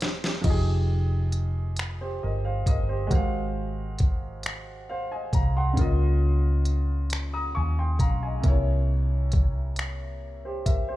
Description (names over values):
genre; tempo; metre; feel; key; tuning
slow six-eight R&B; 45 BPM (dotted quarters); 6/8; straight; F minor; A4 = 444 Hz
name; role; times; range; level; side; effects
warm baby grand piano; accompaniment; 0.0-11.0 s; C3 to Eb6; -31 LUFS; left 1 dB; slapback echo
vintage muted fingered electric bass; bass; 0.0-11.0 s; E1 to Eb2; -25 LUFS; equal; none
smooth R&B drum kit; drums; 0.0-10.9 s; crash cymbal, finger snaps, hi-hat, kick drum, snare drum; -24 LUFS; equal; none
room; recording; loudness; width
digital ambience; live gig heard through the venue's PA, club ambience; -23 LUFS; side -16 dB against mid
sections
0.4-11.0 A section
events
drum fill 0.0-0.4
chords
0.4 Fm9; 3.1 Ab13; 5.8 Db69; 8.4 C7b9